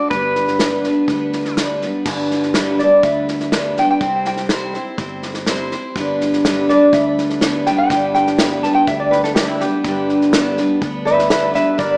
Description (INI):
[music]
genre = honky-tonk and classic country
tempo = 123 BPM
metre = 4/4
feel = straight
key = G major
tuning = A4 = 437 Hz
[part]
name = pedal steel guitar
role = melody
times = 0.0-1.5 s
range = B4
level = -22 LUFS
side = equal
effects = none
[part]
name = picked steel-string acoustic guitar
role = accompaniment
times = 0.0-12.0 s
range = G2 to C5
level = -21 LUFS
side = equal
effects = none
[part]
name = fingered electric bass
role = bass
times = 0.1-12.0 s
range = G1 to D2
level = -33 LUFS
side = equal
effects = none
[part]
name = unplugged drum kit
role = drums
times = 0.1-11.9 s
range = crash cymbal, hi-hat, kick drum, snare drum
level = -24 LUFS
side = equal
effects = none
[part]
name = lap resonator guitar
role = second line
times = 2.8-12.0 s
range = E4 to A5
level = -19 LUFS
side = equal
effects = tape echo
[sound]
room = wet recital hall reverb, RT60 1.4 s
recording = small speaker sound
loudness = -17 LUFS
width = mono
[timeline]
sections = 0.0-2.1 A section; 2.1-12.0 B section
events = resonator guitar played with a steel bar solo 2.1-12.0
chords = 0.1 G; 4.0 C; 6.0 G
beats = | 0.12 0.60 1.09 1.58 | 2.07 2.55 3.04 3.53 | 4.01 4.50 4.99 5.47 | 5.96 6.45 6.93 7.42 | 7.91 8.39 8.88 9.37 | 9.85 10.34 10.83 11.31 | 11.80